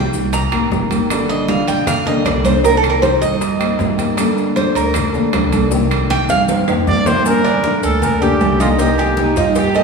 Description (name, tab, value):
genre	latin, Cuban son and guajira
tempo	156 BPM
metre	4/4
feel	straight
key	G minor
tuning	A4 = 441 Hz
part	nylon-string guitar	accompaniment	0.0-9.8 s	C3 to A4	-19 LUFS	left 3 dB	none
part	Cuban tres	arpeggios	0.0-9.8 s	D4 to Bb5	-18 LUFS	right 3 dB	none
part	upright bass	bass	0.0-9.8 s	G1 to G2	-21 LUFS	right 1 dB	none
part	bongos and cowbell	percussion	0.1-9.7 s	none	-26 LUFS	left 2 dB	none
part	congas	percussion	0.1-9.8 s	none	-23 LUFS	right 2 dB	none
part	maracas	percussion	0.1-9.8 s	none	-34 LUFS	left 5 dB	none
part	timbales and agogo bells	percussion	0.3-9.8 s	none	-24 LUFS	right 5 dB	none
part	claves	percussion	0.5-6.9 s	none	-34 LUFS	left 3 dB	none
part	breathy trumpet	melody	6.9-9.3 s	F4 to D5	-19 LUFS	right 1 dB	none
part	dark studio violin section	second line	9.2-9.8 s	Eb4 to A4	-18 LUFS	right 2 dB	none
room	wet concert hall reverb, RT60 1.9 s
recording	recorded in a church or concert hall, small room ambience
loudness	-13 LUFS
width	side -4 dB against mid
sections	0.0-7.3 A section; 7.3-9.8 B section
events	Cuban tres solo 0.0-7.3; drum fill 5.7-7.3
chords	0.0 Cm7; 1.1 Gmadd9; 2.6 Cm7; 4.2 Gmadd9; 5.7 Cm7; 7.3 Gmadd9; 8.8 Cm7